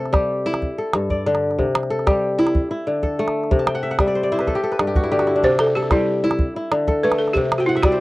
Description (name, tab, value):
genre	west african traditional, West African string and xylophone music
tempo	125 BPM (dotted quarters)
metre	12/8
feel	straight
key	C lydian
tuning	A4 = 441 Hz
part	balafon	melody	0.0-0.3, 5.4-8.0 s	E4 to C5	-20 LUFS	right 1 dB	cassette tape
part	kora	arpeggios	0.0-8.0 s	G2 to A5	-19 LUFS	left 1 dB	cassette tape
part	calabash	percussion	0.1-7.9 s	none	-21 LUFS	right 1 dB	none
room	moderate booth ambience, RT60 0.2 s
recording	home recording on cassette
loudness	-17 LUFS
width	side -19 dB against mid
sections	0.0-5.4 A section; 5.4-8.0 B section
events	kora fill 3.6-5.4, 7.6-8.0; balafon solo 5.4-8.0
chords	0.0 C; 0.6 G5; 1.6 C; 2.5 D5; 3.5 C; 4.5 G5; 5.4 C; 6.4 D5; 7.4 C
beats	0.14 0.62 1.10 | 1.59 2.07 2.55 3.03 | 3.51 4.00 4.48 4.96 | 5.44 5.92 6.40 6.88 | 7.36 7.83